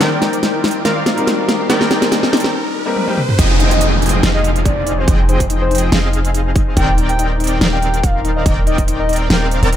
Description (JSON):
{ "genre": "future bass", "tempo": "142 BPM", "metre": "4/4", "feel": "swing 54% on 16ths, half-time", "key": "F dorian", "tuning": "A4 = 439 Hz", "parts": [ { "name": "clear baby grand piano", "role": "accompaniment", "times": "0.0-3.2 s", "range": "G3 to Bb4", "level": "-22 LUFS", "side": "left 3 dB", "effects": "sidechain pumping, ping-pong delay" }, { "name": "concert harp", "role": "arpeggios", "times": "0.0-9.8 s", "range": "Eb4 to G5", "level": "-24 LUFS", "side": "left 7 dB", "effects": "sidechain pumping, ping-pong delay" }, { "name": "supersaw stab", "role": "riff", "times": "0.0-9.8 s", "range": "Eb3 to Bb5", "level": "-20 LUFS", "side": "equal", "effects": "cassette tape, sidechain pumping, ping-pong delay" }, { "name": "big-room dance drum kit", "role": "drums", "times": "0.0-9.8 s", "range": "crash cymbal, hi-hat, snare drum, toms", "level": "-18 LUFS", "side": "equal", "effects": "none" }, { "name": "riser and downlifter", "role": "sound effects", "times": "0.0-6.8 s", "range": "none", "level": "-22 LUFS", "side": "right 1 dB", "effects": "none" }, { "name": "soft octave-layered synth lead", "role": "melody", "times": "3.4-9.5 s", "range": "C5 to G5", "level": "-22 LUFS", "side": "left 1 dB", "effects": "chorus, sidechain pumping, ping-pong delay" }, { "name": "warm 808-style bass", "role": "bass", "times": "3.4-9.8 s", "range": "Eb1 to F1", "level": "-17 LUFS", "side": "equal", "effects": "sidechain pumping" }, { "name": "electronic kick drum", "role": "drums", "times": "3.4-8.9 s", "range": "none", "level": "-16 LUFS", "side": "equal", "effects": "none" } ], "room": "light reverb", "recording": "none", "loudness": "-13 LUFS", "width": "side -10 dB against mid", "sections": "0.0-3.4 A section; 3.4-9.8 B section", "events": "build-up 0.0-3.4; drum fill 0.0-2.5, 3.0-3.4; riser 0.0-3.4; filter sweep on harp 0.0-3.4; break 2.5-3.4; drop 3.4-9.8", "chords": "0.0 Cm7/Eb; 3.2 N.C.; 3.4 Fm7; 6.8 Cm7/Eb" }